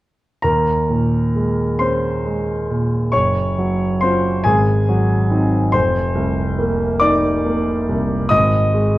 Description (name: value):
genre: classical, impressionist solo piano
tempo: 46 BPM (dotted quarters)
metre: 6/8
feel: rubato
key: Eb dorian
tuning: A4 = 441 Hz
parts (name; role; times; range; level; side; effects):
- clear concert grand piano; solo; 0.4-9.0 s; F1 to Eb6; -15 LUFS; equal; none
room: wet recital hall reverb, RT60 1.4 s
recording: worn, warbling old tape, cassette tape, warbly pitch drift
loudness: -15 LUFS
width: side -16 dB against mid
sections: 0.4-9.0 A section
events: none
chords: 0.4 Eb7sus4; 3.1 Gb5; 4.4 Ab7; 5.7 F7sus4; 8.3 Ab5